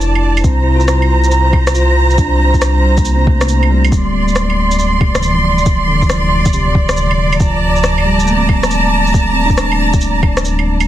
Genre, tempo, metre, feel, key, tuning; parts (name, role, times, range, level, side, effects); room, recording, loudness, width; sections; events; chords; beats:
future garage; 138 BPM; 4/4; swing 66% on 16ths; A4 = 440 Hz
bell-like tine electric piano; accompaniment; 0.0-10.9 s; C3 to F4; -18 LUFS; equal; sidechain pumping, tape echo
rich studio string section; sustained chords; 0.0-10.8 s; C5 to C6; -16 LUFS; right 2 dB; sidechain pumping
dark detuned saw bass; bass; 0.0-10.9 s; D1 to C2; -14 LUFS; equal; sidechain pumping
electronic shaker, claves and rim click; drums; 0.0-10.9 s; -20 LUFS; equal; soft clipping on snare
electronic kick drum; drums; 0.4-10.3 s; -14 LUFS; equal
light reverb; dense, heavily limited modern master; -10 LUFS; side -12 dB against mid
0.0-10.9 A section
0.4 C7sus4; 3.9 Dm7; 7.4 Bbmaj7/D
0.01 | 0.44 0.88 1.31 1.75 | 2.18 2.62 3.05 3.49 | 3.92 4.36 4.79 5.22 | 5.66 6.09 6.53 6.96 | 7.40 7.83 8.27 8.70 | 9.14 9.57 10.01 10.44